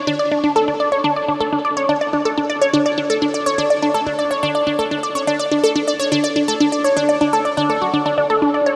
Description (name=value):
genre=ambient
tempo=124 BPM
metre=4/4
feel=straight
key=unclear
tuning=A4 = 440 Hz
part: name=resonant blip pluck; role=solo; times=0.0-8.8 s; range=D4 to D5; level=-18 LUFS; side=equal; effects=phaser, tape echo
room=wet huge ambient reverb, RT60 6.9 s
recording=cassette tape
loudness=-18 LUFS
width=mono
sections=0.0-8.8 A section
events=none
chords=none